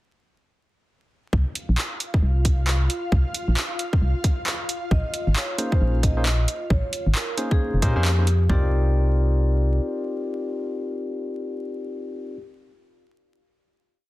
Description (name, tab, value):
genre	UK garage, two-step garage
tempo	134 BPM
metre	4/4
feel	swing 61% on 16ths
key	C minor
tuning	A4 = 440 Hz
part	ethereal airy pad	sustained chords	1.7-8.5 s	F4 to F5	-36 LUFS	left 1 dB	ensemble chorus, built-in reverb, sidechain pumping
part	organ-like FM bass	bass	1.3-9.8 s	F1 to Bb2	-20 LUFS	equal	none
part	garage drum kit	drums	1.3-8.6 s	kick drum, toms	-23 LUFS	equal	none
part	punchy analog drum machine	drums	1.6-8.4 s	handclaps, hi-hat	-27 LUFS	right 1 dB	overdrive
part	vibraphone with medium mallets	melody	4.9-12.4 s	G4 to Eb5	-31 LUFS	left 3 dB	dub echo
part	barky tine electric piano	stabs	5.6-12.4 s	Bb3 to D5	-29 LUFS	equal	dub echo
room	little or no reverb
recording	dense, heavily limited modern master, vinyl crackle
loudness	-20 LUFS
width	side -17 dB against mid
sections	1.3-8.5 groove; 8.5-12.1 final chord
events	none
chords	1.3 Csus4; 4.9 Bbm11; 8.5 Cm11